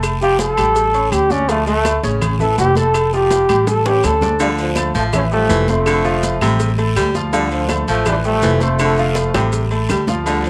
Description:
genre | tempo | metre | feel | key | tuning
latin, salsa | 164 BPM | 4/4 | straight | unclear | A4 = 440 Hz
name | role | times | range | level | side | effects
clear grand piano | accompaniment | 0.0-10.5 s | C#3 to D6 | -26 LUFS | equal | none
upright bass | bass | 0.0-10.5 s | F1 to D2 | -22 LUFS | equal | none
agogo bells and timbales | percussion | 0.0-10.5 s | none | -30 LUFS | equal | none
claves | percussion | 0.0-10.1 s | none | -32 LUFS | equal | none
congas | percussion | 0.0-10.5 s | none | -28 LUFS | equal | none
cowbell and bongos | percussion | 0.0-10.4 s | none | -29 LUFS | equal | none
guiro | percussion | 0.0-10.5 s | none | -36 LUFS | equal | none
maracas | percussion | 0.0-10.5 s | none | -36 LUFS | equal | none
bright trombone | melody | 0.2-4.4 s | A3 to A4 | -18 LUFS | equal | none
clear trombone section | melody | 4.4-10.5 s | D3 to C#4 | -22 LUFS | equal | none
bright baritone saxophone | second line | 4.4-10.5 s | C3 to G3 | -24 LUFS | equal | none
room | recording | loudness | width
moderate spring reverb, RT60 1.2 s, studio ambience | none | -16 LUFS | mono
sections
0.0-4.4 A section; 4.4-10.5 B section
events
trombone solo 0.0-4.4; drum fill 3.3-4.4, 9.3-10.3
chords
0.0 F; 0.8 A7; 1.5 Dm; 2.2 A; 2.9 F; 3.7 A7; 4.4 Dm; 5.1 A5; 5.9 F; 6.6 F69/A; 7.3 Dm; 8.1 A5; 8.8 F; 9.5 F69/A

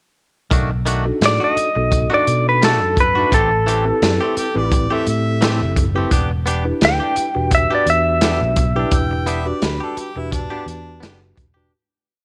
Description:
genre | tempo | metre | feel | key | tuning
straight-eighth soul blues | 86 BPM | 4/4 | swing 56% on 16ths | E minor | A4 = 439 Hz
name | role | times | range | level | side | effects
direct-recorded clean electric guitar | stabs | 0.5-11.7 s | D#3 to G4 | -28 LUFS | equal | none
fingered electric bass | bass | 0.5-11.7 s | E1 to B2 | -24 LUFS | equal | none
crunchy breakbeat drum kit | drums | 0.5-11.6 s | hi-hat, kick drum, snare drum | -22 LUFS | equal | none
mellow tine electric piano | accompaniment | 1.0-11.7 s | B3 to B4 | -27 LUFS | equal | none
direct-recorded clean electric guitar | melody | 1.3-9.2 s | A4 to G5 | -19 LUFS | equal | none
clear harmonica | second line | 4.4-11.0 s | D4 to G5 | -30 LUFS | equal | overdrive
room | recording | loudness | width
light reverb, small room ambience | none | -17 LUFS | mono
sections
0.5-11.7 head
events
fade-out 8.9-11.7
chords
0.5 B7#9; 3.3 Am7; 6.1 Em7

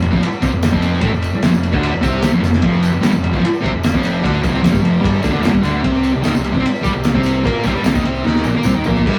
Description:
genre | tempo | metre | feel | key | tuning
garage rock duo or trio | 149 BPM | 4/4 | straight | unclear | A4 = 441 Hz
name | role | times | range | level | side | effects
thick fuzz guitar | riff | 0.0-9.2 s | F2 to Bb4 | -19 LUFS | equal | distortion
fuzz picked electric bass | bass | 0.0-9.2 s | F1 to Bb2 | -24 LUFS | equal | overdrive
cloth-damped thuddy drum kit | drums | 0.0-9.2 s | crash cymbal, kick drum, ride cymbal, snare drum, toms | -20 LUFS | equal | none
tambourine | percussion | 0.1-9.0 s | none | -40 LUFS | equal | none
room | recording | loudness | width
moderate stone room reverb, RT60 1.4 s | rough rehearsal-room recording | -16 LUFS | mono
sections
0.0-9.1 A section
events
drum fill 2.4, 8.2-9.1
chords
0.0 F5; 5.8 C5

